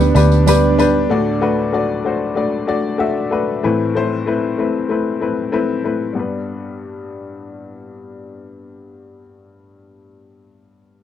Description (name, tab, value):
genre	piano-driven pop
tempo	95 BPM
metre	4/4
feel	straight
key	G major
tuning	A4 = 440 Hz
part	clear upright piano	accompaniment	0.0-11.0 s	D2 to E5	-18 LUFS	left 4 dB	none
part	fingerpicked steel-string acoustic guitar	riff	0.0-1.6 s	G3 to B4	-19 LUFS	right 14 dB	none
part	vintage muted picked electric bass	bass	0.0-1.1 s	D2	-14 LUFS	right 1 dB	none
part	tambourine	percussion	0.0-0.9 s	none	-29 LUFS	right 18 dB	none
room	studio ambience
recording	dry, close 1970s-style studio recording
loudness	-15 LUFS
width	side -10 dB against mid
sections	0.0-1.1 A section; 1.1-6.2 B section; 6.2-8.7 C section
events	none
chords	0.0 G; 1.1 D; 3.6 Amadd9; 6.2 G